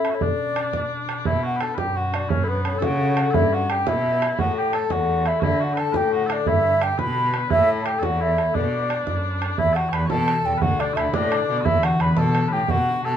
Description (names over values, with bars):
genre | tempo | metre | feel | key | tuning
celtic folk, Celtic jig | 115 BPM (dotted quarters) | 6/8 | straight | B minor, E minor from 9.6 s | A4 = 440 Hz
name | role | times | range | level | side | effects
baroque flute | melody | 0.0-13.2 s | A4 to B5 | -23 LUFS | right 1 dB | none
mellow small bagpipes | second line | 0.0-13.2 s | B3 to C#5 | -28 LUFS | left 3 dB | none
concert harp | accompaniment | 0.0-13.2 s | A2 to D5 | -27 LUFS | left 6 dB | none
bodhran | percussion | 0.0-12.8 s | none | -26 LUFS | right 5 dB | none
rich cello | bass | 1.3-13.2 s | D2 to D3 | -26 LUFS | right 1 dB | none
room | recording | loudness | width
moderate studio reverb, RT60 0.7 s | minimal, uncompressed stereo recording | -19 LUFS | side -9 dB against mid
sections
0.0-1.3 A section; 1.3-9.6 A section; 9.6-13.2 B section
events
none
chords
0.2 Bm; 2.3 F#m; 3.3 Em/G; 4.4 A; 5.4 D; 6.5 Em/G; 7.5 A; 8.5 Bm; 9.6 Emadd9; 10.6 Dadd9; 11.7 Em7